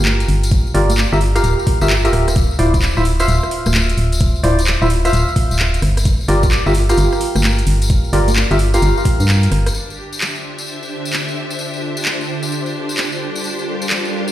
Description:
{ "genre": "UK garage, two-step garage", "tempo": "130 BPM", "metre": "4/4", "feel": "swing 65% on 16ths", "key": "D minor", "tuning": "A4 = 440 Hz", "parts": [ { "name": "percussive organ stab", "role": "stabs", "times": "0.0-9.7 s", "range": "E4 to F5", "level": "-18 LUFS", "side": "equal", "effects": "lush chorus, ping-pong delay" }, { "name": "organ-like FM bass", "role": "bass", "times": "0.0-9.7 s", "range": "D1 to G2", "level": "-15 LUFS", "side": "equal", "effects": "none" }, { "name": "tambourine", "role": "percussion", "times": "0.0-14.3 s", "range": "none", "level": "-27 LUFS", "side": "left 4 dB", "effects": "none" }, { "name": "garage drum kit", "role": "drums", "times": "0.1-14.0 s", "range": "congas, handclaps, hi-hat, rim click", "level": "-21 LUFS", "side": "equal", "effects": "overdrive, studio reverb" }, { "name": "electronic kick drum", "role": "drums", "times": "0.5-9.2 s", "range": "none", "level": "-15 LUFS", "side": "equal", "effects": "overdrive, studio reverb" }, { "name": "soft string machine", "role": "sustained chords", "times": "9.9-14.3 s", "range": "D3 to E5", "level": "-25 LUFS", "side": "equal", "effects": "phaser, ensemble chorus, sidechain pumping" }, { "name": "bright studio string section", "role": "texture", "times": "9.7-14.3 s", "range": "D4 to F5", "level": "-24 LUFS", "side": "equal", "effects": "sidechain pumping" } ], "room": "light reverb, digital ambience", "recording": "played on a big sound system in a bare room, stone room reverb", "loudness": "-14 LUFS", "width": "side -13 dB against mid", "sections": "0.0-9.7 A section; 9.7-14.3 B section", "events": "kick drops out 9.3-9.7; band accent 9.3", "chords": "0.0 Gm7; 2.4 Dm9; 5.8 Gm7; 9.7 Dm9; 13.2 Gm7" }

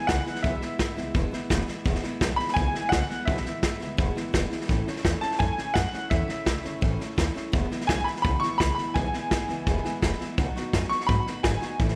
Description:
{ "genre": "rockabilly", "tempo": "169 BPM", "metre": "4/4", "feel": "straight", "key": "E major", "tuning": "A4 = 439 Hz", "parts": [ { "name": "bright upright piano", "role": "melody", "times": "0.0-11.8 s", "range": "E5 to C#6", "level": "-31 LUFS", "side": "equal", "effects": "slapback echo" }, { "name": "picked steel-string acoustic guitar", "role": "accompaniment", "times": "0.0-12.0 s", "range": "E2 to F#4", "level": "-35 LUFS", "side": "equal", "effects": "none" }, { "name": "upright bass", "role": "bass", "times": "0.1-11.9 s", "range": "E1 to G#2", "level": "-32 LUFS", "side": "equal", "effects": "none" }, { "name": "vintage drum kit", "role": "drums", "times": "0.1-11.9 s", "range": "hi-hat, kick drum, snare drum", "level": "-30 LUFS", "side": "equal", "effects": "none" } ], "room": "light reverb, small room ambience", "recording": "none", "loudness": "-27 LUFS", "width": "mono", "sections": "0.0-12.0 A section", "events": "none", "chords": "0.0 E; 4.7 A; 7.5 E; 10.4 B" }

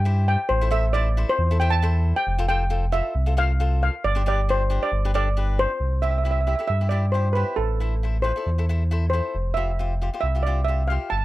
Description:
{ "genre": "calypso", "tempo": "136 BPM", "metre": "4/4", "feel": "straight", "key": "C major", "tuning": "A4 = 441 Hz", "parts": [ { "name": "steel pan", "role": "melody", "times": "0.0-11.2 s", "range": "A4 to A5", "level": "-25 LUFS", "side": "right 1 dB", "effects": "none" }, { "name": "sub bass with octave", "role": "bass", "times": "0.0-11.2 s", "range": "F1 to G2", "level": "-22 LUFS", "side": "equal", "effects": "none" }, { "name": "cavaquinho", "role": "accompaniment", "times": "0.1-11.1 s", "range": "D4 to D5", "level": "-32 LUFS", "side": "left 5 dB", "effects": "none" } ], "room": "small room ambience", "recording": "dry, close 1970s-style studio recording", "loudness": "-20 LUFS", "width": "side -16 dB against mid", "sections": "0.0-5.8 A section; 5.8-11.2 B section", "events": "none", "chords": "0.0 C; 0.5 Am; 2.3 Fadd9; 4.0 Gsus4; 4.9 G; 5.8 C; 7.6 Am; 9.3 Fsus2" }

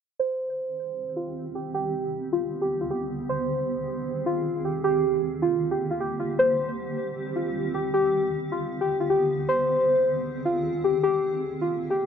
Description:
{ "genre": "hip hop", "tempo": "155 BPM", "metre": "4/4", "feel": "half-time", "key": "C minor", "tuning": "A4 = 438 Hz", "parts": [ { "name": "muted felt-like synth keys", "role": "melody", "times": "0.2-12.1 s", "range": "F4 to C5", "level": "-24 LUFS", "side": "equal", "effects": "chorus, phaser, low-pass filter, tape echo" }, { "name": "granular cloud pad", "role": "sustained chords", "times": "1.0-12.1 s", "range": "G4", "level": "-31 LUFS", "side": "right 1 dB", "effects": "built-in reverb, low-pass filter" } ], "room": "wet booth ambience, RT60 0.2 s", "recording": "none", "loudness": "-24 LUFS", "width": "side -7 dB against mid", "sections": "0.2-12.1 A section", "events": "filter sweep 0.2-12.1", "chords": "0.2 Cm; 1.7 G; 3.3 Ab; 4.8 Gm; 6.4 Cm; 7.9 G; 9.5 Ab; 11.0 Gm" }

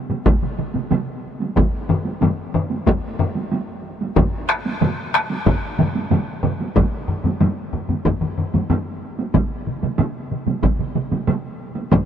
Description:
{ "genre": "japanese traditional, taiko drum ensemble", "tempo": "93 BPM", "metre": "4/4", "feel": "straight", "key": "none", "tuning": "none", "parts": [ { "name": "taiko ensemble", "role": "percussion", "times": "0.1-12.1 s", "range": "none", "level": "-24 LUFS", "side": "right 3 dB", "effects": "none" }, { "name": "taiko ensemble", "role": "percussion", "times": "0.1-11.4 s", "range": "none", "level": "-23 LUFS", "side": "right 2 dB", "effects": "none" }, { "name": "taiko ensemble", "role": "percussion", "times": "0.3-12.1 s", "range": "none", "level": "-22 LUFS", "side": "left 1 dB", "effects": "none" }, { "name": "taiko ensemble", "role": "percussion", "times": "1.6-12.1 s", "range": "none", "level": "-22 LUFS", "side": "left 3 dB", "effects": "none" } ], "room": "moderate huge ambient reverb, RT60 4.8 s", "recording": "lossy compression artefacts", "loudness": "-18 LUFS", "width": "side -9 dB against mid", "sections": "0.0-12.1 A section", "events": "none", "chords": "none" }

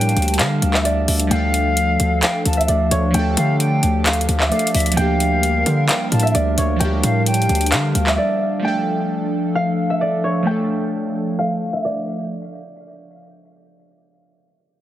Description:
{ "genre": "hip hop, trap", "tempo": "131 BPM", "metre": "4/4", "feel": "half-time", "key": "D harmonic minor", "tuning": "A4 = 440 Hz", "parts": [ { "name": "concert harp", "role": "melody", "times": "0.0-13.7 s", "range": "C#5 to G5", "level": "-23 LUFS", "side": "right 1 dB", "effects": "low-pass filter, tape echo" }, { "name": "silver concert flute", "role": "second line", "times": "0.0-7.7 s", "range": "E5 to A5", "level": "-24 LUFS", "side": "left 2 dB", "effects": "tape echo" }, { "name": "glassy digital keys", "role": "accompaniment", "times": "0.0-12.3 s", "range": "F3 to Bb4", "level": "-24 LUFS", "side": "equal", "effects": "chorus, low-pass filter" }, { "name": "warbly tape-like pad", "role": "sustained chords", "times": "0.0-12.3 s", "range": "F3 to A5", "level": "-25 LUFS", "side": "equal", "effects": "chorus, built-in reverb, phaser, low-pass filter" }, { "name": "distorted 808-style bass", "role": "bass", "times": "0.0-8.2 s", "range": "D2 to D3", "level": "-19 LUFS", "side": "equal", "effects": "distortion" }, { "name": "trap drum kit", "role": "drums", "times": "0.0-8.2 s", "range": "handclaps, hi-hat", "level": "-21 LUFS", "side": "equal", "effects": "none" } ], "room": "digital ambience", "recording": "heavily compressed radio sound, multiband compression", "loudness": "-16 LUFS", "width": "side -12 dB against mid", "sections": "0.0-8.6 A section; 8.6-12.3 B section", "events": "break 8.2-8.6; filter sweep 8.6-12.3", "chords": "0.0 Bb6/D; 1.3 Dm; 5.0 Bb6/D; 8.6 Dm" }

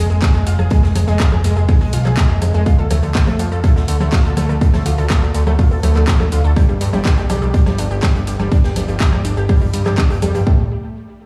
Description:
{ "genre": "melodic techno", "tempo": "123 BPM", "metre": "4/4", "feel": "straight", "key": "unclear", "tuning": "A4 = 443 Hz", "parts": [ { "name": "unison pluck", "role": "arpeggios", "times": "0.0-10.7 s", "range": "G3 to A5", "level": "-25 LUFS", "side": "equal", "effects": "sidechain pumping, tape echo" }, { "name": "fat analog bass", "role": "bass", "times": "0.0-10.7 s", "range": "D1 to G2", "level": "-19 LUFS", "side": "equal", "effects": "sidechain pumping" }, { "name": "house drum kit", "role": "drums", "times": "0.1-10.4 s", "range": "congas, handclaps, hi-hat, rim click, shaker", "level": "-25 LUFS", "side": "equal", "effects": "overdrive, sidechain pumping on perc, sidechain pumping on hats" }, { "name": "big rock drum kit", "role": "drums", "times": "0.2-10.5 s", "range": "hi-hat, snare drum", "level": "-39 LUFS", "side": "equal", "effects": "none" }, { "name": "electronic kick drum", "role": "drums", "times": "0.2-10.6 s", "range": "none", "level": "-16 LUFS", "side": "equal", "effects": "overdrive" } ], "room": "little or no reverb", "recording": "played on a big sound system in a bare room, stone room reverb, small room ambience", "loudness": "-15 LUFS", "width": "mono", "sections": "0.0-10.5 A section", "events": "drop 0.0-10.5", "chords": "0.0 Fm; 2.7 Dm; 6.6 G; 10.5 N.C." }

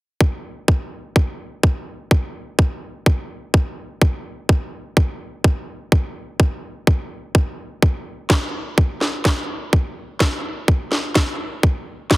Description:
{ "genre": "bass house", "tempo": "126 BPM", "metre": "4/4", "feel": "swing 57% on 16ths", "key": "none", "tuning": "none", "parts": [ { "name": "electronic kick drum", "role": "drums", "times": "0.2-12.2 s", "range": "none", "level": "-17 LUFS", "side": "equal", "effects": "none" }, { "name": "electronic snare drum", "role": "drums", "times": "8.3-12.2 s", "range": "none", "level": "-21 LUFS", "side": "equal", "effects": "none" } ], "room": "little or no reverb", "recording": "heavily compressed radio sound", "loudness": "-18 LUFS", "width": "side -21 dB against mid", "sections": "0.2-12.2 A section", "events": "none", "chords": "none" }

